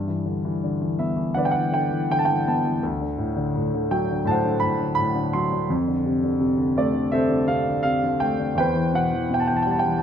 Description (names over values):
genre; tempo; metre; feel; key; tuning
classical, lyrical solo piano; 83 BPM; 4/4; rubato; G major; A4 = 440 Hz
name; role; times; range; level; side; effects
warm grand piano; solo; 0.0-10.0 s; D2 to C6; -20 LUFS; equal; none
room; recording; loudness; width
moderate recital hall reverb, RT60 1.6 s; close, detailed microphones; -20 LUFS; side -8 dB against mid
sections
0.0-10.0 A section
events
none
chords
0.0 G6; 2.8 D7; 5.7 F6; 8.6 Cmaj7/E